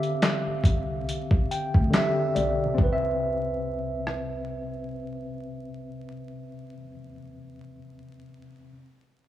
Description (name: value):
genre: lo-fi hip hop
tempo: 70 BPM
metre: 4/4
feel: swing 57% on 16ths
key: C major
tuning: A4 = 440 Hz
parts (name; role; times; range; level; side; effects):
- tine electric piano; accompaniment; 0.0-8.7 s; C3 to D6; -29 LUFS; equal; medium stereo tremolo
- boom bap sampler-style drum kit; drums; 0.0-4.3 s; handclaps, hi-hat, kick drum, rim click, snare drum; -23 LUFS; equal; none
- upright bass; bass; 0.5-6.9 s; B1 to D2; -34 LUFS; left 1 dB; none
room: light reverb, digital ambience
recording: vinyl crackle, small room ambience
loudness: -24 LUFS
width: side -13 dB against mid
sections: 0.0-2.8 A section; 2.8-6.2 B section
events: tine electric piano fill 1.1-2.8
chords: 0.0 D9sus4; 2.8 Cmaj7